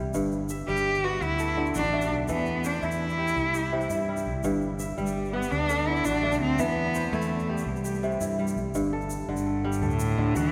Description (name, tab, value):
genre	west african traditional, West African string and xylophone music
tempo	112 BPM (dotted quarters)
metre	12/8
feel	straight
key	G major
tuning	A4 = 441 Hz
part	kora	arpeggios	0.0-10.5 s	G2 to E5	-32 LUFS	equal	none
part	mellow fretless electric bass	bass	0.0-10.5 s	G1 to G2	-34 LUFS	equal	none
part	egg shaker	percussion	0.1-10.4 s	none	-46 LUFS	equal	none
part	rich cello	melody	0.7-10.5 s	G2 to G4	-30 LUFS	equal	none
room	wet cathedral reverb, RT60 5.8 s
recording	recorded in a church or concert hall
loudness	-27 LUFS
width	mono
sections	0.0-8.7 A section; 8.7-10.5 B section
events	none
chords	0.1 G; 1.2 D; 2.3 Em; 3.4 C; 4.4 G; 5.5 D; 6.6 Em; 7.7 C; 8.7 G5; 9.8 D